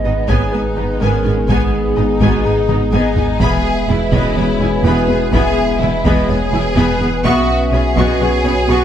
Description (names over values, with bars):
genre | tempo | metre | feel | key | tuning
cinematic, hybrid orchestral and electronic film score | 125 BPM | 4/4 | straight | unclear | A4 = 440 Hz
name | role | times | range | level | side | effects
reedy FM lead | melody | 0.0-8.8 s | F#4 to E5 | -22 LUFS | right 2 dB | chorus, tape echo
warm symphonic violin section | melody | 0.0-8.8 s | D#5 to C#6 | -28 LUFS | left 4 dB | none
rich symphonic violin section | second line | 0.0-8.8 s | B3 to G#4 | -23 LUFS | left 2 dB | none
warm studio viola section | accompaniment | 0.0-8.8 s | B3 to G#4 | -22 LUFS | equal | none
chorused pulse-width pad | sustained chords | 0.0-8.8 s | G#3 to B4 | -23 LUFS | left 2 dB | none
dark trombone section | sustained chords | 0.0-8.8 s | G#2 to B3 | -25 LUFS | right 2 dB | none
warm French horn section | sustained chords | 0.0-8.8 s | B3 to G#4 | -24 LUFS | left 2 dB | none
resonant blip pluck | arpeggios | 0.0-8.8 s | E3 to C#5 | -27 LUFS | left 2 dB | none
rich symphonic cello section | bass | 0.0-8.8 s | E2 to B2 | -22 LUFS | right 2 dB | none
warm sub bass | bass | 0.0-8.8 s | E1 to B1 | -22 LUFS | equal | none
dark baby grand piano | texture | 0.0-8.8 s | B3 to E6 | -29 LUFS | left 2 dB | none
rich symphonic double bass section | bass | 0.1-8.8 s | E1 to B1 | -22 LUFS | right 3 dB | none
taiko ensemble | drums | 0.3-8.4 s | none | -22 LUFS | equal | none
room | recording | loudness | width
moderate recital hall reverb, RT60 1.4 s | none | -12 LUFS | side -10 dB against mid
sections
0.0-8.8 A section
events
drum fill 2.7-3.4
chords
0.0 G#m; 3.4 E; 7.3 Bsus2